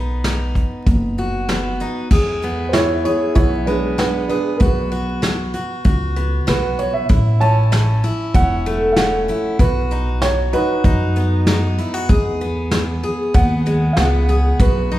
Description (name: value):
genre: honky-tonk and classic country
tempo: 96 BPM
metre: 4/4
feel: straight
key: E major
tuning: A4 = 441 Hz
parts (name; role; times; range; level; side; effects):
- picked steel-string acoustic guitar; accompaniment; 0.0-15.0 s; E2 to G#4; -22 LUFS; left 1 dB; none
- upright bass; bass; 0.0-15.0 s; E1 to F#2; -20 LUFS; equal; none
- soft brush drum kit; drums; 0.2-15.0 s; crash cymbal, hi-hat, kick drum, snare drum; -18 LUFS; equal; none
- dark upright piano; second line; 2.7-15.0 s; D4 to A5; -21 LUFS; right 2 dB; slapback echo
room: moderate recital hall reverb, RT60 1.6 s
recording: heard from further back in the room, vinyl crackle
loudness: -15 LUFS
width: side -14 dB against mid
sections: 0.0-2.1 A section; 2.1-15.0 B section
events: upright piano solo 2.1-15.0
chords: 0.0 B; 2.1 E; 4.6 B; 7.1 A; 9.6 B; 12.1 E